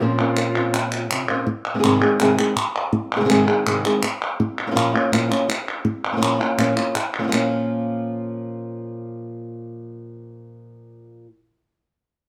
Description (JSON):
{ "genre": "flamenco", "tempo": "164 BPM", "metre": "4/4", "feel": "straight", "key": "Bb minor", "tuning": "A4 = 439 Hz", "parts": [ { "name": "flamenco guitar", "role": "melody", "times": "0.0-11.3 s", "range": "Ab2 to Bb4", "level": "-23 LUFS", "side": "equal", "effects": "none" }, { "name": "hollow concert flute", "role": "second line", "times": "0.0-1.3 s", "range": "F4", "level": "-30 LUFS", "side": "equal", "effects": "none" }, { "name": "flamenco guitar", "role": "stabs", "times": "0.0-1.5 s", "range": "Bb2 to C5", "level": "-27 LUFS", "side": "equal", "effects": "none" }, { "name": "palmas hand claps", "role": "percussion", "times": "0.2-7.4 s", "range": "none", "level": "-26 LUFS", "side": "equal", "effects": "none" } ], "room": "light reverb", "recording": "none", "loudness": "-21 LUFS", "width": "mono", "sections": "0.0-1.5 A section; 1.5-7.3 B section; 7.3-10.3 C section", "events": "none", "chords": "0.0 Bbmadd9; 1.5 Ab; 4.4 Bbm" }